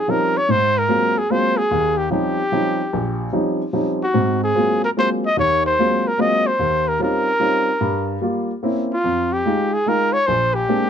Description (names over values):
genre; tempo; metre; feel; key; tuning
jazz; 147 BPM; 3/4; swing 65% on 8ths; Eb mixolydian; A4 = 441 Hz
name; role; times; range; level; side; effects
breathy trumpet; melody; 0.0-10.9 s; F4 to Eb5; -18 LUFS; equal; none
warm baby grand piano; accompaniment; 0.1-10.9 s; Bb1 to G4; -20 LUFS; equal; none
room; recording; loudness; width
light reverb; close, detailed microphones; -16 LUFS; side -8 dB against mid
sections
0.0-10.9 A section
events
none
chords
0.5 Ab13; 1.7 Eb13; 4.1 Ab13; 6.6 Eb13; 7.8 Gm7; 8.6 C7b9; 9.0 Fm7; 10.3 Bb13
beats
0.07 | 0.47 0.88 1.29 | 1.70 2.10 2.51 | 2.92 3.33 3.73 | 4.14 4.55 4.96 | 5.37 5.77 6.18 | 6.59 7.00 7.40 | 7.81 8.22 8.63 | 9.04 9.44 9.85 | 10.26 10.67